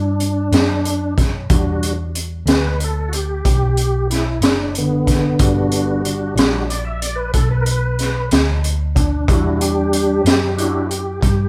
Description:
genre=slow blues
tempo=62 BPM (dotted quarters)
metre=12/8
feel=straight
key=E minor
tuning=A4 = 440 Hz
part: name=tonewheel organ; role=sustained chords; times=0.0-11.5 s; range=D3 to E5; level=-22 LUFS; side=equal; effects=chorus vibrato, slow rotary speaker
part: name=hollow-body short-scale picked electric bass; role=bass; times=0.0-11.5 s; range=F#1 to G2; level=-23 LUFS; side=equal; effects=none
part: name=raw garage drum kit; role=drums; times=0.2-11.4 s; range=hi-hat, kick drum, snare drum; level=-20 LUFS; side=equal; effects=none
room=moderate large studio reverb, RT60 1.2 s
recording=band playing live in one room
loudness=-18 LUFS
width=mono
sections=0.0-11.5 A section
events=tonewheel organ solo 0.0-11.5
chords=0.0 Em9

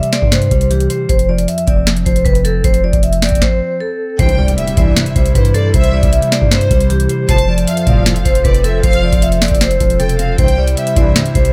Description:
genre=hip hop, trap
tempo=155 BPM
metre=4/4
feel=half-time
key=C major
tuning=A4 = 440 Hz
part: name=vibraphone with medium hard mallets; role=melody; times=0.0-11.5 s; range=G4 to E5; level=-20 LUFS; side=equal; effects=none
part: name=mellow electric guitar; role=accompaniment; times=0.0-11.5 s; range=F2 to C5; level=-22 LUFS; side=equal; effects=none
part: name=long sustained 808-style bass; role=bass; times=0.0-11.5 s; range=E1 to G2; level=-18 LUFS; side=equal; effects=none
part: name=booming analog drum machine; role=drums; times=0.0-11.5 s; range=hi-hat, kick drum, snare drum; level=-16 LUFS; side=equal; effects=none
part: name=warm studio violin section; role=second line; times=4.2-11.5 s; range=C5 to A5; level=-27 LUFS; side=equal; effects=digital delay
part: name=hollow soft pad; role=sustained chords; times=4.2-11.5 s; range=C3 to C5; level=-28 LUFS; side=equal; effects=chorus
part: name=mellow synth brass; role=stabs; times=4.2-11.2 s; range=C2 to F3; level=-20 LUFS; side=equal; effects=chorus
part: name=impact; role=sound effects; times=4.2-5.7 s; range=none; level=-28 LUFS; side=equal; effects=none
room=digital ambience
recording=none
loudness=-13 LUFS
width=mono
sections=0.0-4.2 A section; 4.2-11.5 B section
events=stop 3.4-4.2; impact 4.2-5.7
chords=0.0 C; 1.1 F5; 4.2 C; 7.3 F; 10.4 C

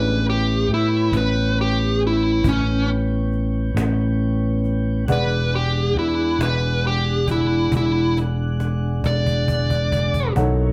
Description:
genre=slow blues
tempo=46 BPM (dotted quarters)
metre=12/8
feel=straight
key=unclear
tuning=A4 = 440 Hz
part: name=dark smooth lead guitar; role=melody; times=0.0-10.3 s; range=C#4 to D5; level=-24 LUFS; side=equal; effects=overdrive
part: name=clear upright piano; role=accompaniment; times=0.0-10.7 s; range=G#3 to F#5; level=-30 LUFS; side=equal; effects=none
part: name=tonewheel organ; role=sustained chords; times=0.0-10.7 s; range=E3 to F#5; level=-33 LUFS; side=equal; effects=slow rotary speaker
part: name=fingered electric bass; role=bass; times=0.0-10.7 s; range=E1 to A2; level=-23 LUFS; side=equal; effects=none
part: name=cajon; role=drums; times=0.7-10.6 s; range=none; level=-30 LUFS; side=equal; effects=none
room=moderate large studio reverb, RT60 0.9 s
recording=band playing live in one room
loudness=-20 LUFS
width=mono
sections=0.0-10.7 A section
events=drum fill 7.7-10.4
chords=0.0 A9; 5.1 E9

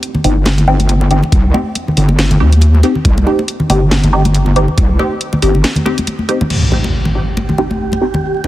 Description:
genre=deep dubstep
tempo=139 BPM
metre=4/4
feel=swing 57% on 16ths, half-time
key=C minor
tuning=A4 = 435 Hz
part: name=garage drum kit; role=drums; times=0.0-6.6 s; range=crash cymbal, hi-hat, snare drum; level=-19 LUFS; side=equal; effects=none
part: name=congas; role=percussion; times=0.1-8.5 s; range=none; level=-19 LUFS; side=left 1 dB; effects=none
part: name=filtered dub chord stab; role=stabs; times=0.2-8.5 s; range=C4 to G4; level=-18 LUFS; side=equal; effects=phaser, lush chorus, dub echo
part: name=wobble bass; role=bass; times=0.2-5.6 s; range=G1 to Eb2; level=-10 LUFS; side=equal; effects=chorus, tube saturation
part: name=electronic kick drum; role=drums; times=1.3-4.9 s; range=none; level=-12 LUFS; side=equal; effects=none
part: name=impact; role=sound effects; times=6.5-8.2 s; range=none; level=-17 LUFS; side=equal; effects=none
part: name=wind-like tuned noise texture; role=texture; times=7.1-8.5 s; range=G4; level=-22 LUFS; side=right 3 dB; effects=built-in reverb
room=light reverb, digital ambience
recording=dense, heavily limited modern master, vinyl crackle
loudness=-10 LUFS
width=side -15 dB against mid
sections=0.0-6.5 A section; 6.5-8.5 B section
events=filter sweep on synth stab 0.0-6.5; impact 6.5-8.2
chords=0.0 Cm

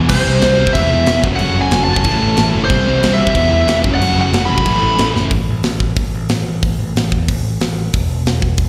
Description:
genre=punk rock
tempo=184 BPM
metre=4/4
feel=straight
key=unclear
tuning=A4 = 440 Hz
part: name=crunchy overdriven guitar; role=riff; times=0.0-5.3 s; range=E2 to C4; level=-25 LUFS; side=equal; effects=none
part: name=fuzz guitar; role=riff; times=0.0-5.3 s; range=A2 to F#4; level=-26 LUFS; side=equal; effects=distortion, slapback echo
part: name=sludgy distorted guitar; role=riff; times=0.0-5.3 s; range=E2 to C4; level=-22 LUFS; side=equal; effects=overdrive, slapback echo
part: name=overdriven picked electric bass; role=bass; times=0.0-8.7 s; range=E1 to E2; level=-20 LUFS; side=equal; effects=none
part: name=biting lead guitar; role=melody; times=0.1-5.1 s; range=C5 to B5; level=-19 LUFS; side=equal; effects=overdrive, slapback echo
part: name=tight metal drum kit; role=drums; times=0.1-8.7 s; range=crash cymbal, hi-hat, kick drum, snare drum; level=-21 LUFS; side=equal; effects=none
room=little or no reverb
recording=live gig heard through the venue's PA, recital hall reverb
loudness=-15 LUFS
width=mono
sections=0.1-5.3 A section; 5.3-8.7 B section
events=drum fill 5.1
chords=0.1 C; 0.8 E; 1.2 F#m; 2.1 A; 2.7 C; 3.4 E; 3.8 F#m; 4.7 A; 5.3 A5; 7.9 E5

